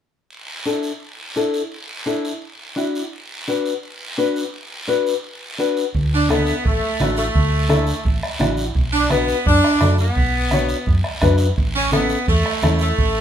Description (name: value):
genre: latin, cumbia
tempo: 171 BPM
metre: 4/4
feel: straight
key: D major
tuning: A4 = 439 Hz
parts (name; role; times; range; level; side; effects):
- guiro; percussion; 0.3-13.2 s; none; -31 LUFS; right 2 dB; none
- nylon-string guitar; accompaniment; 0.7-12.9 s; C#4 to C#5; -21 LUFS; left 4 dB; none
- hollow-body short-scale fingered electric bass; bass; 5.9-13.2 s; A1 to F#2; -20 LUFS; equal; none
- bombo; percussion; 5.9-13.2 s; none; -22 LUFS; right 1 dB; none
- congas; percussion; 5.9-13.2 s; none; -25 LUFS; right 1 dB; none
- edgy saxophone section; melody; 6.1-13.2 s; A3 to D4; -20 LUFS; right 1 dB; none
room: moderate studio reverb, RT60 0.8 s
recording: minimal, uncompressed stereo recording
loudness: -17 LUFS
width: side -9 dB against mid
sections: 0.3-5.9 A section; 5.9-13.2 B section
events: none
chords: 0.3 Dsus2; 3.1 Bm; 5.9 Dsus2; 8.8 Bm; 11.6 A